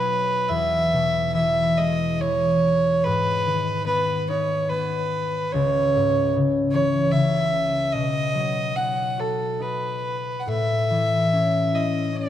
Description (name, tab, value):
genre	celtic folk, Celtic slow air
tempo	68-78 BPM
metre	3/4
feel	rubato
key	E major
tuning	A4 = 443 Hz
part	rich fiddle	melody	0.0-12.3 s	A4 to F#5	-22 LUFS	right 1 dB	none
part	concert harp	accompaniment	0.0-12.3 s	C#2 to F#4	-24 LUFS	left 2 dB	none
room	moderate concert hall reverb, RT60 2.4 s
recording	dark, warm production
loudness	-20 LUFS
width	side -11 dB against mid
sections	0.5-12.3 A section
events	none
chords	0.5 E; 3.0 G#m; 5.5 C#m; 7.9 B; 10.5 A